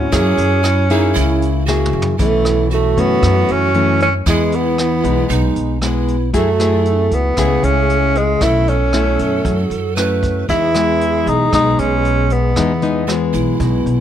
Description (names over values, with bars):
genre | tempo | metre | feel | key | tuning
bossa nova | 116 BPM | 4/4 | straight | E major | A4 = 440 Hz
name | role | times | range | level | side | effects
mellow tenor saxophone | melody | 0.0-13.4 s | G#3 to E4 | -17 LUFS | right 1 dB | none
nylon-string guitar | accompaniment | 0.0-14.0 s | F#2 to G#4 | -19 LUFS | left 5 dB | none
upright bass | bass | 0.0-14.0 s | B1 to F#2 | -19 LUFS | equal | none
breathy reedy pan flute | second line | 0.1-14.0 s | Eb4 to B4 | -22 LUFS | right 9 dB | none
jazz brush drum kit | drums | 0.1-14.0 s | hi-hat, kick drum, rim click, snare drum, toms | -24 LUFS | right 1 dB | none
room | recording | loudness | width
little or no reverb | close, detailed microphones | -13 LUFS | side -10 dB against mid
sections
0.0-2.2 A section; 2.2-14.0 B section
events
drum fill 1.7-2.2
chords
0.1 F#9; 2.2 B9sus4; 4.3 Emaj7; 6.3 F#m9; 8.4 B9sus4; 10.5 Emaj7